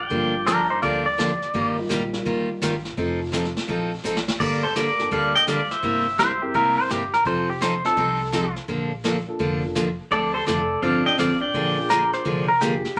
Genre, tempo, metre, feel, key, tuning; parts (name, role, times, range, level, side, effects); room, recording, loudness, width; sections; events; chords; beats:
country, western swing; 168 BPM; 4/4; swing 65% on 8ths; Bb major; A4 = 439 Hz
pedal steel guitar; melody; 0.0-1.0, 4.4-6.7, 10.1-12.4 s; A4 to G5; -26 LUFS; equal
upright bass; bass; 0.0-13.0 s; F1 to D2; -39 LUFS; equal
dark upright piano; accompaniment; 0.1-12.8 s; G3 to Bb4; -33 LUFS; equal
picked steel-string acoustic guitar; accompaniment; 0.1-13.0 s; C3 to A4; -28 LUFS; equal
vintage brush drum kit; drums; 0.1-13.0 s; brushed snare drum, crash cymbal, hi-hat, kick drum, snare drum; -34 LUFS; equal
clean lap steel guitar; second line; 0.5-1.8, 6.2-8.5, 11.9-13.0 s; D4 to D5; -24 LUFS; equal
vintage hollow-body jazz guitar; second line; 10.1-12.4 s; G3 to D4; -30 LUFS; equal
wet club reverb, RT60 0.5 s; -23 LUFS; mono
0.0-13.0 A section
drum fill 4.0-4.4
0.1 Gm7; 1.5 Ebadd9/G; 3.0 F7; 4.4 Gmadd9; 5.8 C7/G; 7.3 F7; 8.7 Bbmaj7; 10.1 Dm7; 11.5 Bb7
| 0.11 0.47 0.83 1.19 | 1.54 1.90 2.26 2.62 | 2.97 3.33 3.69 4.04 | 4.40 4.76 5.12 5.47 | 5.83 6.19 6.54 6.90 | 7.26 7.61 7.97 8.33 | 8.69 9.04 9.40 9.76 | 10.11 10.47 10.83 11.19 | 11.54 11.90 12.26 12.61 | 12.97